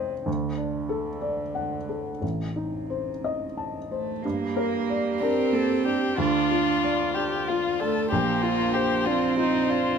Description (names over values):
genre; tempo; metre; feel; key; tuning
neoclassical piano and strings; 62 BPM (dotted quarters); 6/8; rubato; G minor; A4 = 440 Hz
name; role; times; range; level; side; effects
warm cello; second line; 0.0-10.0 s; C3 to D4; -28 LUFS; right 6 dB; none
felt-muted upright piano; accompaniment; 0.0-10.0 s; A1 to A5; -28 LUFS; left 1 dB; none
warm viola; accompaniment; 4.2-10.0 s; F4 to C5; -32 LUFS; right 3 dB; none
dark violin; melody; 5.2-10.0 s; Eb4 to Bb4; -26 LUFS; left 7 dB; none
room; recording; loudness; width
light reverb; close, detailed microphones; -23 LUFS; side -6 dB against mid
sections
0.0-4.2 A section; 4.2-10.0 B section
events
none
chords
0.3 D; 2.2 Adim; 4.2 Gm; 6.2 Dm; 8.1 Bbadd9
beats
| 0.27 1.23 | 2.22 3.23 | 4.24 5.21 | 6.18 7.15 | 8.10 9.05